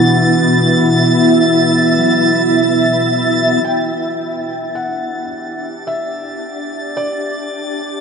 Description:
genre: ambient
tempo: 54 BPM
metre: 3/4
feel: straight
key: G major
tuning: A4 = 440 Hz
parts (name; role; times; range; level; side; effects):
- ethereal airy pad; sustained chords; 0.0-8.0 s; B2 to E5; -15 LUFS; equal; ensemble chorus, built-in reverb
- tine electric piano; arpeggios; 0.0-5.2 s; F#3 to B4; -30 LUFS; left 1 dB; none
- analog drone; drone; 0.0-3.8 s; E3 to F#4; -20 LUFS; left 1 dB; chorus
- drifting glass-harmonics texture; texture; 0.0-8.0 s; A6; -20 LUFS; right 1 dB; chorus, built-in reverb
- felt-muted upright piano; melody; 3.6-8.0 s; D5 to G5; -25 LUFS; equal; diffuse ambient delay
room: wet huge ambient reverb, RT60 8.3 s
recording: none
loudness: -12 LUFS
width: side -6 dB against mid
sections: 0.0-3.7 A section; 3.7-8.0 B section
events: fade-in on ambient pad 3.7-8.0; fade-in on synth texture 3.7-8.0; fade-in on felt piano 3.7-8.0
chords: 0.0 Bsus4; 3.7 G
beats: | 0.32 1.43 2.54 | 3.65 4.76 5.87 | 6.98

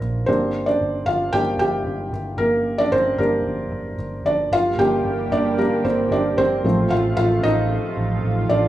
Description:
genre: pop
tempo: 113 BPM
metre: 4/4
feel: straight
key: unclear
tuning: A4 = 440 Hz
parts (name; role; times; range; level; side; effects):
- felt-muted upright piano; accompaniment; 0.0-8.7 s; F3 to G5; -19 LUFS; equal; none
- vintage muted fingered electric bass; bass; 0.0-8.7 s; G1 to Bb1; -26 LUFS; right 1 dB; none
- lush unison pad; sustained chords; 4.5-8.7 s; C3 to G4; -24 LUFS; right 3 dB; chorus
room: wet studio reverb, RT60 0.7 s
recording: rough home demo mix, studio reverb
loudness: -18 LUFS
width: side -13 dB against mid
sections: 0.0-4.5 A section; 4.5-8.7 B section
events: felt piano solo 0.0-4.5, 4.5-8.7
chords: 0.3 Gm; 6.6 F/A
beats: | 0.28 0.81 1.34 1.87 | 2.40 2.93 3.46 4.00 | 4.53 5.06 5.59 6.12 | 6.65 7.18 7.71 8.24

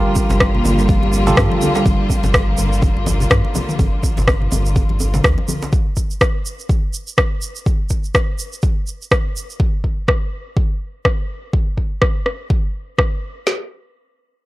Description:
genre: afro house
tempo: 124 BPM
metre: 4/4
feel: swing 57% on 16ths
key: G minor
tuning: A4 = 440 Hz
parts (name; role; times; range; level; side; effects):
- rich symphonic string section; sustained chords; 0.0-5.7 s; D3 to F4; -24 LUFS; left 2 dB; sidechain pumping
- bell-like tine electric piano; stabs; 0.0-1.8 s; F4 to Bb4; -22 LUFS; right 4 dB; sidechain pumping, analog delay
- warm sub bass; bass; 0.0-5.3 s; G1 to G2; -19 LUFS; equal; sidechain pumping
- marimba with soft mallets; arpeggios; 0.1-1.8 s; D3 to G4; -22 LUFS; right 2 dB; sidechain pumping, analog delay
- afro-pop drum kit; drums; 0.2-13.6 s; kick drum, snare drum; -17 LUFS; equal; overdrive
- djembe; percussion; 0.2-5.7 s; none; -28 LUFS; right 2 dB; none
- egg shaker; percussion; 0.2-9.6 s; none; -30 LUFS; right 5 dB; none
- congas; percussion; 0.3-5.6 s; none; -26 LUFS; left 2 dB; none
- afro-pop drum kit; drums; 0.4-13.1 s; rim click, toms; -19 LUFS; equal; overdrive
room: little or no reverb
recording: dry, gritty hardware recording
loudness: -15 LUFS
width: side -18 dB against mid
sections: 0.0-13.5 A section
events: none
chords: 0.0 Gm7; 5.7 N.C.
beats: 0.40 0.89 1.37 | 1.85 2.34 2.82 3.31 | 3.79 4.27 4.76 5.24 | 5.73 6.21 6.69 7.18 | 7.66 8.14 8.63 9.11 | 9.60 10.08 10.56 11.05 | 11.53 12.02 12.50 12.98 | 13.47

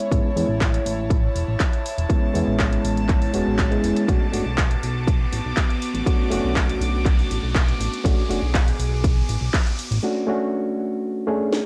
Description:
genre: nu-disco, nu disco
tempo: 121 BPM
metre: 4/4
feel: straight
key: unclear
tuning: A4 = 441 Hz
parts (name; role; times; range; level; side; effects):
- overdriven reed electric piano; accompaniment; 0.0-11.6 s; G#3 to G#4; -26 LUFS; equal; spring reverb, sidechain pumping, cassette tape, analog delay
- dark studio string section; sustained chords; 0.0-10.0 s; B3 to D6; -32 LUFS; equal; sidechain pumping, cassette tape
- house drum kit; drums; 0.0-11.6 s; handclaps, hi-hat, snare drum; -30 LUFS; equal; overdrive, cassette tape
- riser; sound effects; 0.0-10.0 s; none; -39 LUFS; equal; none
- fat analog bass; bass; 0.1-10.0 s; E1 to E2; -27 LUFS; equal; none
- electronic kick drum; drums; 0.1-9.6 s; none; -23 LUFS; equal; overdrive, cassette tape
room: moderate studio reverb, RT60 0.6 s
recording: home recording on cassette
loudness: -22 LUFS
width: mono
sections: 0.0-11.7 A section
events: build-up 0.0-11.7; riser 0.0-10.0; filter sweep on reed electric piano 0.0-11.7; break 10.0-11.7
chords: 0.0 Amaj7; 4.1 Bm7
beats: | 0.12 0.61 1.11 1.61 | 2.10 2.60 3.09 3.59 | 4.09 4.58 5.08 5.57 | 6.07 6.57 7.06 7.56 | 8.05 8.55 9.04 9.54 | 10.04 10.53 11.03 11.52

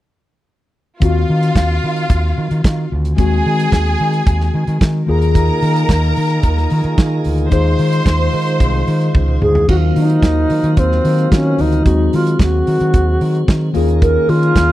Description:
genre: disco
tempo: 111 BPM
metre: 4/4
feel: straight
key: Eb dorian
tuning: A4 = 440 Hz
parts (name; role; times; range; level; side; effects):
- clear studio string section; second line; 1.0-9.4 s; F4 to C6; -22 LUFS; equal; none
- mellow tine electric piano; accompaniment; 1.0-14.7 s; Eb3 to C5; -20 LUFS; left 5 dB; slow stereo tremolo
- overdriven fingered electric bass; bass; 1.0-14.7 s; C2 to Eb3; -16 LUFS; equal; none
- warm soul drum kit; drums; 1.0-14.7 s; crash cymbal, hi-hat, kick drum, snare drum, toms; -13 LUFS; equal; none
- mellow tonewheel organ; sustained chords; 5.3-14.7 s; Eb3 to F5; -23 LUFS; right 3 dB; slow rotary speaker
- wooden-headed alto flute; melody; 9.4-14.7 s; C4 to Bb4; -16 LUFS; equal; none
room: studio ambience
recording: dry, close 1970s-style studio recording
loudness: -12 LUFS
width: side -15 dB against mid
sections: 1.0-9.7 A section; 9.7-14.7 B section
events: drum fill 9.1-9.7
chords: 1.0 Ebm69; 3.2 Ab7/Eb; 5.1 Bb7sus4; 7.5 Fm7/Eb; 9.7 Ebm69; 11.9 Ab7/Eb; 13.7 Db6/Eb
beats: | 1.02 1.56 2.10 2.64 | 3.18 3.72 4.26 4.81 | 5.35 5.89 6.43 6.97 | 7.52 8.06 8.60 9.14 | 9.69 10.23 10.77 11.31 | 11.85 12.39 12.94 13.48 | 14.02 14.56

